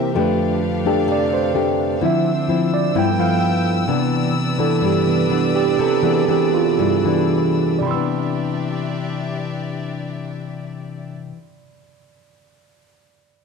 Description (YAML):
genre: bossa nova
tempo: 109-129 BPM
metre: 4/4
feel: straight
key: C major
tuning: A4 = 441 Hz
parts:
  - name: nylon-string guitar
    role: accompaniment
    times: 0.0-11.5 s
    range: G2 to G4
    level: -21 LUFS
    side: left 9 dB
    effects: none
  - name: tine electric piano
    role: accompaniment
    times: 0.0-13.4 s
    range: F2 to E6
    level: -20 LUFS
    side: right 10 dB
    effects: medium stereo tremolo
  - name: dark chamber string section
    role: sustained chords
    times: 0.0-11.1 s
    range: C4 to E6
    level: -27 LUFS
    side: left 2 dB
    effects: none
room: light reverb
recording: 1960s-style stereo with parts hard left and right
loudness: -16 LUFS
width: side -5 dB against mid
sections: 0.0-7.9 A section; 7.9-12.3 B section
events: tine electric piano solo 0.0-7.9; slowing down 3.9-7.9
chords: 0.1 F69; 2.0 Dm9; 2.9 G13; 3.9 Cmaj9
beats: | 0.15 0.61 1.08 1.55 | 2.01 2.48 2.95 3.41 | 3.88 4.35 4.82 5.30 | 5.78 6.28 6.79 7.32 | 7.86 8.41 8.96 9.51 | 10.06 10.61 11.16 11.71